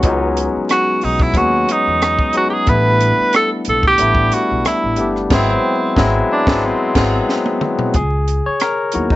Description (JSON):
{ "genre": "R&B, neo-soul", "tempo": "91 BPM", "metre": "4/4", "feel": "swing 53% on 16ths", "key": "unclear", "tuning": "A4 = 440 Hz", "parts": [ { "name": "barky tine electric piano", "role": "accompaniment", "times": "0.0-9.2 s", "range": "F#3 to C#5", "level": "-18 LUFS", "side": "left 2 dB", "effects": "none" }, { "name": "upright bass", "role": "bass", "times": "0.0-9.2 s", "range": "G1 to E2", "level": "-20 LUFS", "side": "equal", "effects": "none" }, { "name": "compact cocktail drum kit", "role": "drums", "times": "0.0-9.2 s", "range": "crash cymbal, hi-hat, kick drum, rim click, snare drum, toms", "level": "-18 LUFS", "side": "equal", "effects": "none" }, { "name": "warm tenor saxophone", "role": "melody", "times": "0.7-7.3 s", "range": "B#3 to B4", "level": "-16 LUFS", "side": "right 1 dB", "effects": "none" } ], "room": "light reverb", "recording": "vinyl crackle, nothing above 8.0 kHz", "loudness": "-13 LUFS", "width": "side -16 dB against mid", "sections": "0.0-7.9 A section; 7.9-9.2 B section", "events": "band accent 5.3-7.9; drum fill 7.3-7.9; tine electric piano solo 7.9-9.2", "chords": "0.0 C#9sus4; 2.7 A9sus4; 5.3 G#7alt; 7.9 C#m11" }